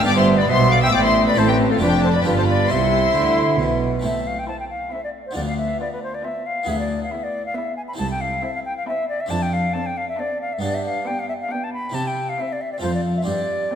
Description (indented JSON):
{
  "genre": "classical, baroque-style concerto movement with solo episodes",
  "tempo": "136 BPM",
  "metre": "3/4",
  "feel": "straight",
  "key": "C major, A minor from 4.0 s, C major from 9.3 s",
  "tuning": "A4 = 440 Hz",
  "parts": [
    { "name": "silver concert flute", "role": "melody", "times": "0.0-13.8 s", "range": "A4 to B5", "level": "-23 LUFS", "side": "left 2 dB", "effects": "none" },
    { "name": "warm chamber violin section", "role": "second line", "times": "0.0-13.8 s", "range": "D4 to E5", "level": "-26 LUFS", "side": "left 2 dB", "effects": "none" },
    { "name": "harpsichord", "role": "accompaniment", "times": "0.0-13.8 s", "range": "C2 to A4", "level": "-27 LUFS", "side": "left 1 dB", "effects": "none" },
    { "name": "warm chamber cello section", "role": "bass", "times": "0.0-13.6 s", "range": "C2 to D3", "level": "-24 LUFS", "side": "right 3 dB", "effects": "none" },
    { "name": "warm chamber double bass section", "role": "bass", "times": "0.0-4.0 s", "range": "F1 to D2", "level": "-23 LUFS", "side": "right 4 dB", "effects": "none" },
    { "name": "warm studio violin section", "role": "melody", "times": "0.1-13.8 s", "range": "G4 to E6", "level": "-25 LUFS", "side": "left 3 dB", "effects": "none" },
    { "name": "warm chamber viola section", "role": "accompaniment", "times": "0.1-13.8 s", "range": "B3 to F4", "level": "-27 LUFS", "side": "equal", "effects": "none" }
  ],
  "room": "wet scoring stage reverb, RT60 1.7 s",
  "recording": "none",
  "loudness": "-18 LUFS",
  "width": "side -8 dB against mid",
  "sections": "0.0-4.0 A section; 4.0-13.8 B section",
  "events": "none",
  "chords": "0.1 G; 1.4 Am; 1.8 Dm/F; 2.3 G7; 2.7 C; 4.0 Am; 5.4 Bdim/D; 6.7 E7/D; 8.0 Am/C; 9.3 Dm7/F; 10.6 G; 11.9 C; 12.8 F"
}